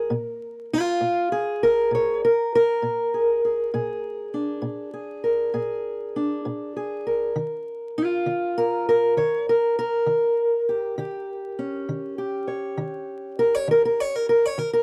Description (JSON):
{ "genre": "acoustic country blues, solo or duo", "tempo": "66 BPM (dotted quarters)", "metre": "12/8", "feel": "straight", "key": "unclear", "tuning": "A4 = 439 Hz", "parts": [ { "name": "fingerpicked acoustic archtop guitar", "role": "solo", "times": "0.0-14.8 s", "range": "Bb2 to Db5", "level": "-24 LUFS", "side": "equal", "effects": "none" } ], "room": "moderate booth ambience, RT60 0.2 s", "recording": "dry, close 1970s-style studio recording, vinyl crackle", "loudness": "-24 LUFS", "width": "mono", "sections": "0.0-14.8 A section", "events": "none", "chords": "0.0 Bb7; 7.3 Eb7" }